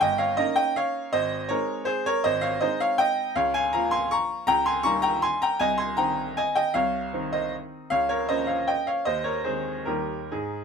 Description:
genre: classical, piano waltz.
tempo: 134-172 BPM.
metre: 3/4.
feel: rubato.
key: Ab major.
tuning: A4 = 439 Hz.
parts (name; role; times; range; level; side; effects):
bright baby grand piano; solo; 0.0-10.6 s; G1 to Db6; -23 LUFS; equal; none.
room: light reverb.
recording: minimal, uncompressed stereo recording.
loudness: -23 LUFS.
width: side -6 dB against mid.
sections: 0.0-10.6 A section.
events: none.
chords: 0.0 Eb7/G; 1.1 Ab; 3.4 Bbm/Db; 4.5 Eb7/Db; 5.6 Ab/C; 7.9 Bbm/Db; 9.1 Ab/Eb; 9.9 Eb.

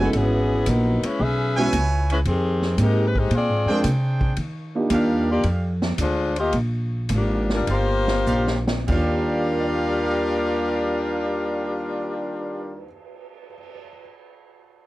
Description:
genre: jazz, big band swing.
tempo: 96-114 BPM.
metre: 4/4.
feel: swing 69% on 8ths.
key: Eb major.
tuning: A4 = 445 Hz.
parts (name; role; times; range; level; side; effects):
warm saxophone section; melody; 0.0-12.8 s; Eb3 to E5; -24 LUFS; left 2 dB; none.
warm grand piano; accompaniment; 0.0-5.4, 8.9-14.0 s; Eb2 to Bb6; -26 LUFS; right 2 dB; none.
clear trumpet section; stabs; 0.0-12.8 s; D4 to G#5; -29 LUFS; right 2 dB; none.
upright bass; bass; 0.0-12.8 s; F#1 to Eb3; -23 LUFS; equal; none.
swinging big-band drum kit; drums; 0.1-13.8 s; crash cymbal, cymbal swell, hi-hat, kick drum, ride cymbal, snare drum; -31 LUFS; equal; none.
room: little or no reverb.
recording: none.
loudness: -20 LUFS.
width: side -17 dB against mid.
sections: 0.0-8.9 A section; 8.9-13.9 B section.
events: slowing down 4.4-8.9; drum fill 8.3-8.9.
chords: 0.1 E6; 2.3 Fm11; 3.3 Bb13; 4.4 Ebmaj9.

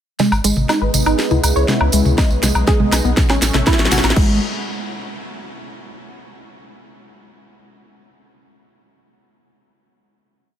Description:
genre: melodic techno.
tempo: 121 BPM.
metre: 4/4.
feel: straight.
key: G# phrygian.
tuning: A4 = 440 Hz.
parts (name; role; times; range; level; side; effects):
lush unison pad; sustained chords; 0.6-4.4 s; C#3 to E4; -24 LUFS; equal; chorus, phaser, sidechain pumping.
tight sequenced synth; arpeggios; 0.2-4.4 s; G#3 to D#5; -21 LUFS; right 1 dB; chorus, sidechain pumping, tape echo.
house drum kit; drums; 0.2-4.3 s; crash cymbal, hi-hat, snare drum, toms, woodblock; -20 LUFS; left 1 dB; small room reverb.
tambourine; percussion; 0.2-4.1 s; none; -26 LUFS; right 6 dB; none.
round analog bass; bass; 0.3-4.4 s; G#1 to C#2; -19 LUFS; equal; tube saturation, sidechain pumping.
electronic kick drum; drums; 2.2-4.3 s; none; -16 LUFS; equal; small room reverb.
room: light reverb.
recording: none.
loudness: -13 LUFS.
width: side -10 dB against mid.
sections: 0.2-4.2 build; 4.2-6.1 final chord.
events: build-up 0.2-4.2; drum fill 0.2-4.2; filter sweep on analog synth pad 0.2-4.2.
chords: 0.2 G#m; 1.2 C#m7; 2.2 G#m/B; 3.2 A6; 4.2 G#m.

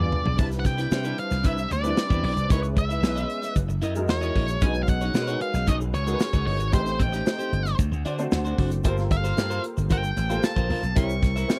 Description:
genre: polished 1980s jazz-funk pop.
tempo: 114 BPM.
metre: 4/4.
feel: straight.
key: unclear.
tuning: A4 = 439 Hz.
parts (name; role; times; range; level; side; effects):
octave-fuzz lead guitar; melody; 0.0-11.6 s; C5 to Db6; -32 LUFS; equal; distortion.
warm concert grand piano; accompaniment; 0.0-11.6 s; G3 to F#5; -33 LUFS; equal; ensemble chorus.
electric guitar at the edge of break-up; riff; 0.0-11.5 s; D4 to E5; -36 LUFS; equal; lush chorus.
slap bass; bass; 0.0-11.4 s; F#1 to D3; -29 LUFS; equal; none.
modern studio drum kit; drums; 0.1-11.6 s; crash cymbal, hi-hat, kick drum, snare drum, toms; -26 LUFS; equal; none.
egg shaker; percussion; 0.4-11.6 s; none; -50 LUFS; equal; none.
room: little or no reverb.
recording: dry, close 1970s-style studio recording.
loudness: -25 LUFS.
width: mono.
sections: 0.4-11.6 A section.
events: drum fill 0.0-0.4; grand piano fill 7.8-8.8.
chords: 0.4 Cmaj9; 2.5 C#m9; 3.6 F#13; 4.6 B69; 6.7 Am7b5; 7.8 D7; 8.8 Gm11; 11.0 C7b9.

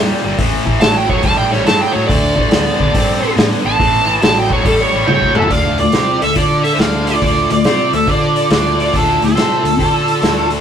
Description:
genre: blues rock power trio and southern rock.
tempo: 140 BPM.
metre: 4/4.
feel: swing 66% on 8ths.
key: D minor.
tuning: A4 = 439 Hz.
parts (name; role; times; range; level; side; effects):
overdriven electric guitar; riff; 0.0-10.6 s; A2 to D5; -18 LUFS; left 2 dB; spring reverb.
vintage muted fingered electric bass; bass; 0.0-10.6 s; G1 to D3; -22 LUFS; left 1 dB; none.
vintage drum kit; drums; 0.4-10.6 s; hi-hat, kick drum, snare drum, toms; -17 LUFS; equal; none.
smooth overdriven lead guitar; second line; 0.8-10.5 s; F4 to A5; -18 LUFS; right 3 dB; none.
octave-fuzz lead guitar; melody; 5.1-10.5 s; A4 to G5; -16 LUFS; right 1 dB; wah, distortion.
room: light reverb.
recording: rough rehearsal-room recording.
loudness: -11 LUFS.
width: side -8 dB against mid.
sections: 0.0-5.5 A section; 5.5-10.6 B section.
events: lead electric guitar solo 0.0-5.5; drum fill 5.1-5.5.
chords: 0.4 A5; 2.1 D5; 3.8 A7; 5.5 Dm.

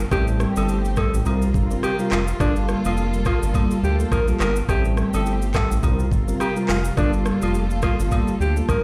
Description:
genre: afrobeats.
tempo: 105 BPM.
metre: 4/4.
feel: swing 58% on 16ths.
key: G dorian.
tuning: A4 = 440 Hz.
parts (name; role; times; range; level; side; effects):
warm studio string section; sustained chords; 0.0-8.8 s; C3 to A4; -32 LUFS; equal; plate reverb.
round analog bass; bass; 0.0-8.8 s; F1 to D2; -25 LUFS; equal; none.
downlifter; sound effects; 0.1-2.4 s; none; barely audible; none; none.
clear alto saxophone; melody; 0.1-8.8 s; D4 to Bb4; -29 LUFS; equal; digital delay, plate reverb.
bell-like tine electric piano; accompaniment; 0.1-8.8 s; G3 to Bb4; -28 LUFS; equal; phaser, plate reverb.
afro-pop drum kit; drums; 0.1-8.8 s; handclaps, hi-hat, kick drum, rim click, shaker; -27 LUFS; equal; none.
agogo bells and woodblock; percussion; 0.1-8.8 s; none; -37 LUFS; equal; none.
room: light reverb.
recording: played on a big sound system in a bare room, stone room reverb.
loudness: -21 LUFS.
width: mono.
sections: 0.0-8.8 A section.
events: none.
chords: 0.1 Am7; 1.3 C7sus4; 2.4 Gm9; 4.7 Am7; 5.8 C7sus4; 7.0 Gm9.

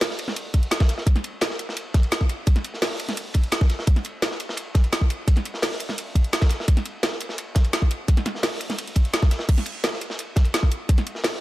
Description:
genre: drum and bass.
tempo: 171 BPM.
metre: 4/4.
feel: straight.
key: none.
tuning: none.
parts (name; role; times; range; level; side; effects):
crunchy breakbeat drum kit; drums; 0.0-11.4 s; hi-hat, ride cymbal, snare drum; -31 LUFS; equal; high-pass filter on cymbals, high-pass filter on hats, high-pass filter on snare, high-pass filter on room.
drum and bass drum kit; drums; 0.0-11.3 s; crash cymbal, hi-hat, snare drum; -26 LUFS; equal; none.
electronic kick drum; drums; 0.5-11.0 s; none; -18 LUFS; equal; none.
room: little or no reverb.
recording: none.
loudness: -20 LUFS.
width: side -17 dB against mid.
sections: 0.0-9.5 A section; 9.5-11.4 A section.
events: drop 0.0-9.5, 9.5-11.4.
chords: none.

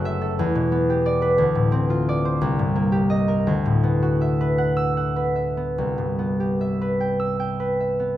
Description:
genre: classical, solo harp piece.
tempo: 48-61 BPM (dotted quarters).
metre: 6/8.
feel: rubato.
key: unclear.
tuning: A4 = 440 Hz.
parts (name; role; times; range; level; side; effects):
concert harp; solo; 0.0-8.2 s; F#1 to E6; -19 LUFS; equal; none.
room: light reverb.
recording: close, detailed microphones.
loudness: -19 LUFS.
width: side -13 dB against mid.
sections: 0.0-8.2 A section.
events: none.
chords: 0.4 Em7; 1.4 Dm7; 2.4 Cm7; 3.5 D69; 5.8 Cmaj7.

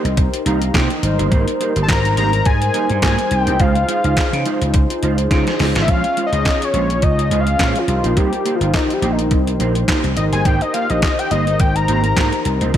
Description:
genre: early-eighties boogie funk.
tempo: 105 BPM.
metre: 4/4.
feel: swing 56% on 16ths.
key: unclear.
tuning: A4 = 438 Hz.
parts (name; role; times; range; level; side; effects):
fat analog lead; melody; 0.0-12.6 s; Eb4 to Bb5; -20 LUFS; left 2 dB; slapback echo.
mellow synth brass; accompaniment; 0.0-12.8 s; G3 to Bb5; -23 LUFS; left 2 dB; chorus, slapback echo.
mellow electric guitar; riff; 0.0-12.8 s; Ab3 to C5; -24 LUFS; right 6 dB; analog chorus, slapback echo.
vintage slap bass; bass; 0.0-12.8 s; G1 to Db3; -19 LUFS; equal; none.
crisp 8-bit digital drum machine; drums; 0.1-12.8 s; handclaps, hi-hat, kick drum, snare drum; -19 LUFS; equal; none.
room: light reverb.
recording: none.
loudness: -14 LUFS.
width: side -10 dB against mid.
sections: 0.0-5.9 A section; 5.9-12.8 B section.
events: drum fill 5.3-5.9; analog synth lead solo 5.9-12.8.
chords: 0.0 Cm7; 1.0 Abmaj9; 3.6 Dbmaj9; 5.9 Bbm9; 7.9 Cm7; 10.2 Abmaj9.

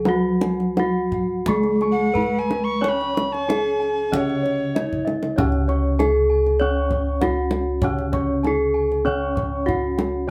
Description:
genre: Javanese gamelan.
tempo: 83-98 BPM.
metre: 4/4.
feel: straight.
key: Db slendro.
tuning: A4 = 442 Hz.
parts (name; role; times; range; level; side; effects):
gamelan-type bronze metallophone; melody; 0.0-10.3 s; Db4 to Db5; -25 LUFS; equal; plate reverb.
gamelan-type bronze metallophone; accompaniment; 0.0-10.3 s; Db3 to Db4; -29 LUFS; equal; none.
gamelan-type bronze metallophone; arpeggios; 0.0-10.3 s; Db5 to Db6; -35 LUFS; equal; none.
gamelan-type bossed gongs; bass; 0.0-10.3 s; Db2 to Db5; -29 LUFS; equal; none.
gamelan-type bossed gongs; arpeggios; 0.1-10.0 s; Db5 to Db6; -35 LUFS; equal; none.
kendang; percussion; 0.1-10.1 s; none; -30 LUFS; equal; none.
breathy alto recorder; second line; 1.9-5.1 s; Db5 to Db6; -29 LUFS; equal; none.
room: moderate studio reverb, RT60 0.6 s.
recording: none.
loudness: -21 LUFS.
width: mono.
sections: 0.0-5.4 A section; 5.4-10.3 B section.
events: drum fill 4.9-5.4.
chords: none.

